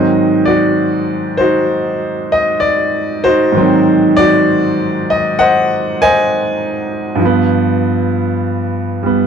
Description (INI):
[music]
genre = solo jazz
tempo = 65 BPM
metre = 4/4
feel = swing 69% on 8ths, rubato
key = unclear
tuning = A4 = 442 Hz
[part]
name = clear grand piano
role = solo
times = 0.0-9.3 s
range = G2 to Ab5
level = -11 LUFS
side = equal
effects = none
[sound]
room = moderate studio reverb, RT60 0.9 s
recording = none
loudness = -11 LUFS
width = side -7 dB against mid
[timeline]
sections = 0.0-9.3 A section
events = none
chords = 0.0 Ab7; 7.2 G7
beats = 0.76 1.70 2.62 | 3.55 4.47 5.38 6.29 | 7.21 8.13 9.05